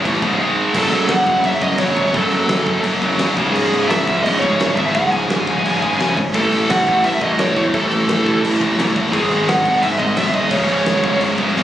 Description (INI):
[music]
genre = heavy metal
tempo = 172 BPM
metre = 4/4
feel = straight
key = C# minor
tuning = A4 = 440 Hz
[part]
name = high-gain distorted guitar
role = riff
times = 0.0-11.6 s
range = C#2 to A3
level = -24 LUFS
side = right 5 dB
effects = distortion
[part]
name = high-gain distorted guitar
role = riff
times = 0.0-11.6 s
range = C#2 to A3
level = -21 LUFS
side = equal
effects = distortion
[part]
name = scooped high-gain guitar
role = riff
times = 0.0-11.6 s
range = C#2 to A3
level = -24 LUFS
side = left 5 dB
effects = distortion
[part]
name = fuzz picked electric bass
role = bass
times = 0.0-11.6 s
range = C#1 to A1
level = -22 LUFS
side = equal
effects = overdrive
[part]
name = big rock drum kit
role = drums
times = 0.1-11.6 s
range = crash cymbal, kick drum, snare drum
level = -23 LUFS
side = equal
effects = none
[part]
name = high-gain lead guitar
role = melody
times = 0.8-11.2 s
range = G#4 to G#5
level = -19 LUFS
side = equal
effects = distortion, ping-pong delay
[sound]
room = moderate small room reverb, RT60 0.5 s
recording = recorded on a phone in the room, club reverb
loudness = -14 LUFS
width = side -11 dB against mid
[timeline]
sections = 0.7-11.6 A section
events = none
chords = 0.4 G#5; 0.7 F#m; 3.4 C#5; 6.3 A5; 9.1 G#5; 10.5 C#5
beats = 0.05 0.40 | 0.75 1.10 1.45 1.80 | 2.15 2.50 2.85 3.20 | 3.55 3.90 4.25 4.60 | 4.95 5.30 5.64 5.99 | 6.34 6.69 7.04 7.39 | 7.74 8.08 8.43 8.78 | 9.13 9.47 9.82 10.17 | 10.51 10.86 11.21 11.56